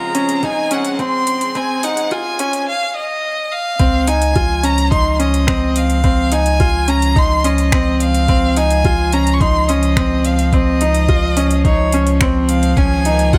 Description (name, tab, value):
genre	piano and strings electronica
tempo	107 BPM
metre	4/4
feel	straight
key	Db major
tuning	A4 = 439 Hz
part	clear violin	melody	0.0-13.4 s	Db5 to Db6	-22 LUFS	equal	none
part	bright string quartet	sustained chords	0.0-13.4 s	Db3 to C4	-27 LUFS	equal	none
part	bright upright piano	riff	0.0-13.4 s	C4 to F4	-20 LUFS	equal	none
part	deep house drum kit	drums	0.1-13.4 s	finger snaps, hi-hat	-27 LUFS	equal	overdrive
part	electronic kick drum	drums	0.4-13.4 s	none	-18 LUFS	equal	none
part	round analog bass	bass	3.8-13.4 s	Db2	-20 LUFS	equal	sidechain pumping
room	light reverb, small room ambience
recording	high-pass filter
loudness	-15 LUFS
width	mono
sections	0.0-3.8 A section; 3.8-13.4 B section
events	build-up 0.0-3.8; filter sweep 0.0-3.8; drop 3.8-13.4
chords	0.0 Dbmaj7; 12.8 Ebsus2/Db